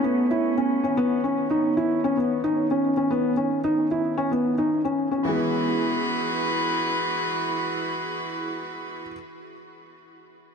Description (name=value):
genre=piano and strings electronica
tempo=112 BPM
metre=4/4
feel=straight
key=E major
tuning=A4 = 439 Hz
part: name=rich string quartet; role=sustained chords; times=0.0-9.0 s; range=D#3 to B4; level=-27 LUFS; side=right 2 dB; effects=low-pass filter
part: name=felt-muted upright piano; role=riff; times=0.0-9.1 s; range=E3 to E4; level=-23 LUFS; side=left 1 dB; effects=digital delay
room=wet huge ambient reverb, RT60 6.9 s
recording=none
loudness=-22 LUFS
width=side -6 dB against mid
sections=0.0-5.2 A section; 5.2-9.5 B section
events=filter sweep on string quartet 0.0-5.2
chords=0.0 Aadd9; 1.0 Badd9; 5.2 Eadd9